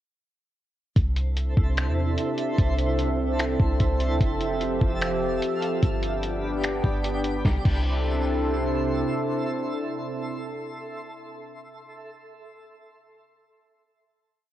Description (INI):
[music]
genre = hip hop, atmospheric cloud-rap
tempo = 148 BPM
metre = 4/4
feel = half-time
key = C major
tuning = A4 = 440 Hz
[part]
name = warbly tape-like pad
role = sustained chords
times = 1.5-11.5 s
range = C3 to E5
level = -27 LUFS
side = equal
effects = chorus, built-in reverb, sidechain pumping, cassette tape
[part]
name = clean 808-style bass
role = bass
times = 1.0-9.0 s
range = F1 to E2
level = -26 LUFS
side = equal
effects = none
[part]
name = lo-fi sampler-style drum kit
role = drums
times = 1.0-7.8 s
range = crash cymbal, finger snaps, hi-hat, kick drum, snare drum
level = -25 LUFS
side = equal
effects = vintage 12-bit sampler grit, cassette tape
[part]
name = twinkling granular texture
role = texture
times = 1.2-11.5 s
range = E4 to C6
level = -34 LUFS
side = right 1 dB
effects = built-in reverb, cassette tape
[sound]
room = digital ambience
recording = home recording on cassette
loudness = -23 LUFS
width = side -12 dB against mid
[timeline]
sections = 1.0-7.4 verse; 7.4-10.7 final chord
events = none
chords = 1.0 C6; 4.2 Fmaj7; 5.8 G; 7.4 C6